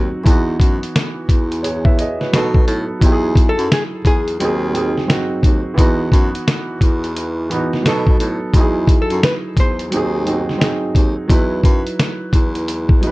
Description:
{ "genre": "lo-fi hip hop", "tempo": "87 BPM", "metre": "4/4", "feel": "swing 63% on 16ths", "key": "unclear", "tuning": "A4 = 440 Hz", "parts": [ { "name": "dark upright piano", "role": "accompaniment", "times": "0.0-13.1 s", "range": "E3 to E5", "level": "-20 LUFS", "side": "right 2 dB", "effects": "cassette tape, low-pass filter" }, { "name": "breathy baritone saxophone", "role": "bass", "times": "0.0-13.1 s", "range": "D#2 to B2", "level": "-22 LUFS", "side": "equal", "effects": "none" }, { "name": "lo-fi sampler-style drum kit", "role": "drums", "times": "0.3-13.1 s", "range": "hi-hat, kick drum, snare drum", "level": "-14 LUFS", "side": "equal", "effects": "none" }, { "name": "archtop guitar, miked and amplified", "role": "melody", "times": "3.5-10.9 s", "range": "G#4 to B#4", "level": "-22 LUFS", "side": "left 2 dB", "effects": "low-pass filter, tape echo" } ], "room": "little or no reverb", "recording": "none", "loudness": "-14 LUFS", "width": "side -21 dB against mid", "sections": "0.0-13.1 A section", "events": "none", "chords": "0.3 Emaj13; 2.3 B7; 3.0 Emaj9; 4.4 G#7/D#; 5.8 Badd11/E; 7.8 B7; 8.5 Emaj9; 9.9 G#7/D#; 11.3 Badd11/E" }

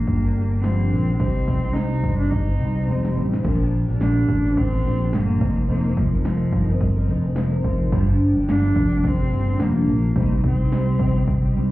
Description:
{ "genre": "acoustic pop", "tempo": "107 BPM", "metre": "4/4", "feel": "swing 60% on 16ths", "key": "Bb major", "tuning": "A4 = 435 Hz", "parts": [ { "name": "clear cello", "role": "melody", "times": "0.0-11.5 s", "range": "F3 to Eb4", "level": "-25 LUFS", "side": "equal", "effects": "none" }, { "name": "picked twelve-string acoustic guitar", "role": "accompaniment", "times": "0.0-11.7 s", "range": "G2 to Bb4", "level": "-26 LUFS", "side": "equal", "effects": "double-tracked left and right" }, { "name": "sustaining fretless electric bass", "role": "bass", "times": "0.0-11.7 s", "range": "F1 to C2", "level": "-21 LUFS", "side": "equal", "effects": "none" }, { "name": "punchy analog drum machine", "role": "drums", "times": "0.1-11.7 s", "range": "crash cymbal, kick drum, shaker, snare drum", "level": "-24 LUFS", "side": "equal", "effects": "overdrive" } ], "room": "light reverb", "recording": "heard muffled through a wall, club reverb, EQ", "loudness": "-18 LUFS", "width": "side -17 dB against mid", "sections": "0.0-3.4 A section; 3.4-11.7 B section", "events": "drum fill 2.3-3.4", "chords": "0.0 Gm7; 1.2 Cm; 3.4 Bb6; 5.4 F7sus4; 7.9 Gm7; 10.2 Cm" }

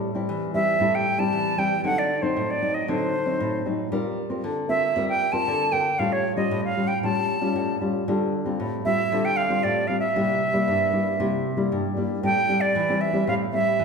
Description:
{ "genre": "samba", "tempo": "116 BPM", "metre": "4/4", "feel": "straight", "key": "unclear", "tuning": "A4 = 441 Hz", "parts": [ { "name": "nylon-string guitar", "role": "accompaniment", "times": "0.0-13.8 s", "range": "G2 to Bb4", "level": "-24 LUFS", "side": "left 2 dB", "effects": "none" }, { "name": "bright concert flute", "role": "melody", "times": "0.5-13.8 s", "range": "C5 to A5", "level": "-23 LUFS", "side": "right 2 dB", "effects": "none" } ], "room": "wet large studio reverb, RT60 1.3 s", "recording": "heard from further back in the room", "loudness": "-21 LUFS", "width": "side -5 dB against mid", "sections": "0.0-12.2 A section; 12.2-13.8 B section", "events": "none", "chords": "0.0 Am7; 1.8 D7b9; 3.9 Gm7; 6.0 Aaug7; 8.1 Dm7; 10.2 C7; 12.2 Am7" }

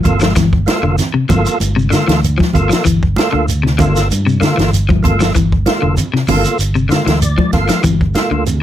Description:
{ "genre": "afrobeat", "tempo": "96 BPM", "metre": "4/4", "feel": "straight", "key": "G dorian", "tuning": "A4 = 440 Hz", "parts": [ { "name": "percussive tonewheel organ", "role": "accompaniment", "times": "0.0-8.4 s", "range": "Bb3 to F5", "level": "-18 LUFS", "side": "right 2 dB", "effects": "slow rotary speaker, overdrive, chorus vibrato" }, { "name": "electric guitar at the edge of break-up", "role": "arpeggios", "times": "0.0-8.5 s", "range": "C3 to F3", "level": "-16 LUFS", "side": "left 5 dB", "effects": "none" }, { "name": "compact cocktail drum kit", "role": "drums", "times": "0.0-8.6 s", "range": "hi-hat, kick drum, snare drum", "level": "-17 LUFS", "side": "right 1 dB", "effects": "none" }, { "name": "shekere", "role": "percussion", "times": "0.0-8.6 s", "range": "none", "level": "-23 LUFS", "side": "right 2 dB", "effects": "none" }, { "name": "fingered electric bass", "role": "bass", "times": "0.1-8.6 s", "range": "F1 to G2", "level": "-16 LUFS", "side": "equal", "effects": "none" }, { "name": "congas", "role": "percussion", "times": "0.1-8.6 s", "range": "none", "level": "-21 LUFS", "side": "right 3 dB", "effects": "none" } ], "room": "little or no reverb", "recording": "none", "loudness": "-11 LUFS", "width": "side -11 dB against mid", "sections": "0.0-8.6 A section", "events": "tonewheel organ fill 6.9-7.8", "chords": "0.0 Gm9" }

